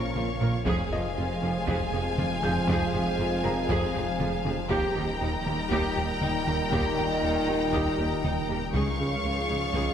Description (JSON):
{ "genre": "cinematic, hybrid orchestral and electronic film score", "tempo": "119 BPM", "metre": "4/4", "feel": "straight", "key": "F minor", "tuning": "A4 = 440 Hz", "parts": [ { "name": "warm symphonic violin section", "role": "melody", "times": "0.0-9.9 s", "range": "Ab5 to Db6", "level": "-34 LUFS", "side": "left 3 dB", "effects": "none" }, { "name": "rich studio violin section", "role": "second line", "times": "0.0-9.9 s", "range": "F5 to G5", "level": "-34 LUFS", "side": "left 2 dB", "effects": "none" }, { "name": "glassy FM pad", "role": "sustained chords", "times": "0.0-9.9 s", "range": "F3 to Eb5", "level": "-35 LUFS", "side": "equal", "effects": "ensemble chorus, built-in reverb" }, { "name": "mellow French horn section", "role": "sustained chords", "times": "0.0-9.9 s", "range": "G3 to Eb4", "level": "-35 LUFS", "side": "left 4 dB", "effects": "none" }, { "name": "mellow trombone section", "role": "sustained chords", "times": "0.0-9.9 s", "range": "F2 to F3", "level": "-35 LUFS", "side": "right 2 dB", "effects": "none" }, { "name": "chorused synth bass", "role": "riff", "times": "0.0-9.9 s", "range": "Db2 to F3", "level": "-34 LUFS", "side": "right 1 dB", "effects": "none" }, { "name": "swelling detuned saw bass", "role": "bass", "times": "0.0-9.9 s", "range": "Eb1 to Db2", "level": "-37 LUFS", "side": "equal", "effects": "none" }, { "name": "felt-muted upright piano", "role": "texture", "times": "0.0-9.9 s", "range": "F4 to G6", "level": "-40 LUFS", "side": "left 1 dB", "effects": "none" }, { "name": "rich symphonic viola section", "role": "accompaniment", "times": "0.2-9.9 s", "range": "Eb4 to Bb4", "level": "-35 LUFS", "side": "right 1 dB", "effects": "none" }, { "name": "rich symphonic cello section", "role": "bass", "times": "0.2-9.8 s", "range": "Db2 to Bb2", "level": "-35 LUFS", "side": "right 2 dB", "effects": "none" }, { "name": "warm studio double bass section", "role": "bass", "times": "0.2-9.8 s", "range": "F1 to Eb2", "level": "-35 LUFS", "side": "right 3 dB", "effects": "none" }, { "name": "taiko ensemble", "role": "drums", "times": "0.2-9.9 s", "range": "none", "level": "-35 LUFS", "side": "equal", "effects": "none" } ], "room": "wet scoring stage reverb, RT60 1.9 s", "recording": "none", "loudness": "-24 LUFS", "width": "side -8 dB against mid", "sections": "0.0-9.9 A section", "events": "none", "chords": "0.0 Bbm; 0.7 Fm; 4.7 Eb; 8.7 Db" }